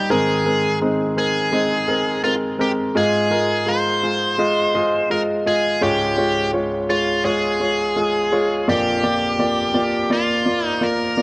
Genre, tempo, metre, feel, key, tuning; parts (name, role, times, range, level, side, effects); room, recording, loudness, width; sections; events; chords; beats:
pop; 84 BPM; 4/4; straight; A4 = 442 Hz
biting lead guitar; melody; 0.0-11.2 s; F4 to C5; -24 LUFS; equal; overdrive
clear baby grand piano; accompaniment; 0.0-11.2 s; Bb1 to F5; -22 LUFS; equal
moderate lush hall reverb, RT60 2.5 s; dark, warm production; -20 LUFS; mono
0.0-11.2 A section
0.1 Abadd9; 3.0 Fm7/Ab; 5.8 Db; 8.7 Bb
| 0.10 0.81 1.53 2.24 | 2.96 3.67 4.39 5.10 | 5.82 6.53 7.25 7.96 | 8.68 9.39 10.11 10.82